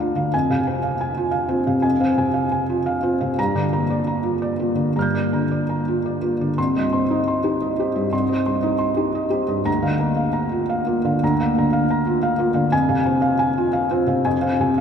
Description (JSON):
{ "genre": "neoclassical minimalist piano", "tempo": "117 BPM", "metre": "3/4", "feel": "rubato", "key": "C minor", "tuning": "A4 = 444 Hz", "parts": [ { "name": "felt-muted upright piano", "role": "solo", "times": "0.0-14.8 s", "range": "C2 to G6", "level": "-18 LUFS", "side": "equal", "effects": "none" } ], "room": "wet cathedral reverb, RT60 5.4 s", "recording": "in a vast, echoing space", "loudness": "-18 LUFS", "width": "side -7 dB against mid", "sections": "0.0-6.6 A section; 6.6-14.8 A section", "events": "none", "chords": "0.3 Fm; 3.4 Gm7; 6.6 Cm; 9.7 Bb/D; 12.7 Fm" }